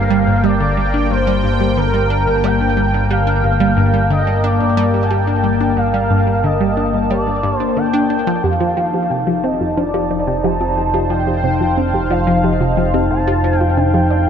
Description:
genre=ambient, sequencer-driven space music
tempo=90 BPM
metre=4/4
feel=straight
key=G minor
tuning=A4 = 440 Hz
part: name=expressive portamento lead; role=melody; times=0.0-14.3 s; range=Bb4 to A5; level=-20 LUFS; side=equal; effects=ensemble chorus, cassette tape, ping-pong delay
part: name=sweeping resonant pad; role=sustained chords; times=0.0-14.3 s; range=Bb3 to A5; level=-19 LUFS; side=left 2 dB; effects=chorus
part: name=analog pluck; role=riff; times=0.0-14.3 s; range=F2 to D4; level=-19 LUFS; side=equal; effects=chorus, phaser, vintage 12-bit sampler grit, ping-pong delay
part: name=fat analog bass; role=bass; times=0.0-14.3 s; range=F1 to G1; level=-19 LUFS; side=equal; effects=none
part: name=soft round pluck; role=arpeggios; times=8.4-14.2 s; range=D4 to G5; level=-24 LUFS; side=right 1 dB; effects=chorus, auto-pan, ping-pong delay
room=moderate huge ambient reverb, RT60 9.0 s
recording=none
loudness=-13 LUFS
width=side -8 dB against mid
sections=0.0-14.3 A section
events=none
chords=0.0 Gmadd9; 8.4 F7

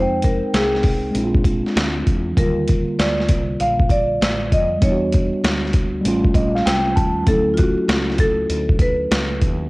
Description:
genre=hip hop, jazz-hop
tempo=98 BPM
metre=4/4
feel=swing 65% on 16ths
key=unclear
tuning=A4 = 440 Hz
part: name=marimba with medium hard mallets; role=melody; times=0.0-9.7 s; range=F4 to F5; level=-22 LUFS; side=equal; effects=cassette tape
part: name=mellow tine electric piano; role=accompaniment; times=0.0-9.7 s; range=D3 to A5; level=-22 LUFS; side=equal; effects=medium stereo tremolo, cassette tape
part: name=woody fretless electric bass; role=bass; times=0.0-9.7 s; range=A1 to F2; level=-26 LUFS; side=equal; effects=none
part: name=boom bap sampler-style drum kit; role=drums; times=0.2-9.6 s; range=hi-hat, kick drum, snare drum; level=-18 LUFS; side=equal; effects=none
room=light reverb, digital ambience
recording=home recording on cassette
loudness=-16 LUFS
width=side -23 dB against mid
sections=0.0-9.7 A section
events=tine electric piano fill 6.0-7.3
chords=0.0 Fm9; 1.1 Bb7; 2.4 Ebmaj9; 4.8 Em7; 6.0 A7alt; 7.3 Dmaj7

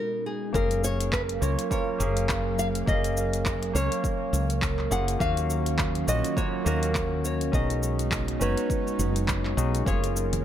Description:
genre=sunset chillout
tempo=103 BPM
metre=4/4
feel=swing 58% on 16ths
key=F# major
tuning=A4 = 435 Hz
part: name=nylon-string guitar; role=melody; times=0.0-10.4 s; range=G#4 to F#5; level=-32 LUFS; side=left 1 dB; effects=analog delay
part: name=barky tine electric piano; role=accompaniment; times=0.0-10.4 s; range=B2 to E#5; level=-31 LUFS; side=moving between left 6 dB and right 2 dB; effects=auto-pan, tape echo
part: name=airy breathy pad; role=sustained chords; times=0.0-10.4 s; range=B2 to E#5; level=-34 LUFS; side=right 3 dB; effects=chorus
part: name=concert harp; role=arpeggios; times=0.0-10.4 s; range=D#4 to G#5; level=-38 LUFS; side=right 8 dB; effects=tape echo
part: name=woody fretless electric bass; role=bass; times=0.5-10.4 s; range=F#1 to D#2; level=-28 LUFS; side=equal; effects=none
part: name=electronic kick drum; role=drums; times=0.5-10.0 s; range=none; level=-30 LUFS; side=equal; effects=overdrive
part: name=smooth R&B drum kit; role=drums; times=0.5-10.4 s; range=handclaps, hi-hat, shaker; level=-33 LUFS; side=left 1 dB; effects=none
part: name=congas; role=percussion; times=10.3-10.4 s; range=none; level=-30 LUFS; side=left 4 dB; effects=none
room=light reverb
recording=echo-heavy mix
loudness=-24 LUFS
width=side -10 dB against mid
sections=0.5-10.4 A section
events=none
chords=0.0 B6; 0.5 F#maj7; 5.2 D#m7; 7.5 B6; 9.9 F#maj7

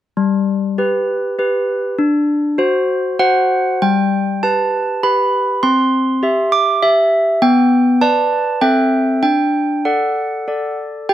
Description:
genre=classical, lullaby for handbells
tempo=99 BPM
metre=3/4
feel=straight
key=G major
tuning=A4 = 441 Hz
part: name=handbells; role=solo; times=0.2-11.1 s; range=G3 to D6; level=-13 LUFS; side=equal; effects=none
room=light reverb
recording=dry, close 1970s-style studio recording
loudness=-13 LUFS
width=side -12 dB against mid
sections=0.2-3.8 A section; 3.8-11.1 B section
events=none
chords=0.2 G; 2.0 D7; 3.8 G; 5.6 C; 7.4 G/B; 8.6 Am/C; 9.2 D

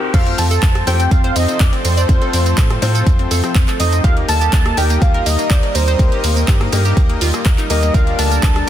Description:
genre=progressive house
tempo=123 BPM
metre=4/4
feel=straight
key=unclear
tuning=A4 = 439 Hz
part: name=warm baby grand piano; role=stabs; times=0.0-8.6 s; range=Bb3 to C5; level=-24 LUFS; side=left 5 dB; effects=sidechain pumping, ping-pong delay
part: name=warm velvety synth lead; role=melody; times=0.1-8.7 s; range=C5 to A5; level=-21 LUFS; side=right 1 dB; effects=chorus, tremolo, sidechain pumping, ping-pong delay
part: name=soft synth bell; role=second line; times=0.1-8.6 s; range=C5 to A5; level=-29 LUFS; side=right 2 dB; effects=none
part: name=supersaw pad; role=sustained chords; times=0.1-8.7 s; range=F3 to Eb5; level=-25 LUFS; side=right 1 dB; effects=sidechain pumping
part: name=analog pluck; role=arpeggios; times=0.1-8.6 s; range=Bb3 to D5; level=-25 LUFS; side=equal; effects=chorus, sidechain pumping, ping-pong delay
part: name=tight sequencer bass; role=bass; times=0.1-8.6 s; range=D2 to A2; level=-17 LUFS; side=equal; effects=sidechain pumping
part: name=breakbeat sampler-style drum kit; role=drums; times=0.1-8.7 s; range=hi-hat, snare drum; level=-33 LUFS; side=right 1 dB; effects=none
part: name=deep house drum kit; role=drums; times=0.1-8.7 s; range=crash cymbal, handclaps, hi-hat, rim click, tambourine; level=-23 LUFS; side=right 1 dB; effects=none
part: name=electronic kick drum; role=drums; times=0.1-8.5 s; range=none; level=-14 LUFS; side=equal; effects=high-pass filter on kick
room=little or no reverb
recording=dense, heavily limited modern master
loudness=-12 LUFS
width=side -11 dB against mid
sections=0.1-8.7 A section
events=drop 0.1-8.7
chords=0.1 F; 4.0 Eb; 7.9 Gm/D

